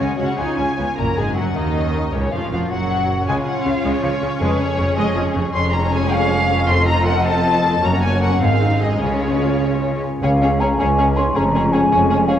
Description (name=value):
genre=classical, dramatic, fast romantic movement for symphony orchestra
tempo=105 BPM (dotted quarters)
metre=6/8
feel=straight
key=F# major, Db major from 5.5 s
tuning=A4 = 440 Hz
part: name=rich symphonic violin section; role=melody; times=0.0-12.4 s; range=B4 to C6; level=-23 LUFS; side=left 2 dB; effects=none
part: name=rich symphonic violin section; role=second line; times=0.0-12.4 s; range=C#4 to Eb5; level=-26 LUFS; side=equal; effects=none
part: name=clear symphonic viola section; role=accompaniment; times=0.0-12.4 s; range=C#3 to F4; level=-26 LUFS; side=right 1 dB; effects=none
part: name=mellow French horn section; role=sustained chords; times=0.0-0.8, 10.2-12.4 s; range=Ab3 to F#4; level=-23 LUFS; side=left 1 dB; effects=none
part: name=concert harp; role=arpeggios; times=0.0-12.4 s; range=E#2 to F5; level=-23 LUFS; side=left 3 dB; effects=none
part: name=rich symphonic cello section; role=bass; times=0.0-12.4 s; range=C#2 to C#3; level=-24 LUFS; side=right 2 dB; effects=none
part: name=rich symphonic double bass section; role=bass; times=0.0-12.4 s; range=E#1 to D#2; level=-24 LUFS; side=right 3 dB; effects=none
part: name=mellow hollow concert flute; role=second line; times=10.2-12.4 s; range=F5 to C6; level=-18 LUFS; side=equal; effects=none
room=wet scoring stage reverb, RT60 1.8 s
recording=worn, warbling old tape, cassette tape, warbly pitch drift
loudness=-16 LUFS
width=side -10 dB against mid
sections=1.0-10.2 A section; 10.2-12.4 B section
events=none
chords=0.4 C#; 1.0 F#; 3.3 C#; 4.4 C#/E#; 6.7 F7; 7.8 Gb; 8.4 Ab; 9.0 Db; 11.4 Db/F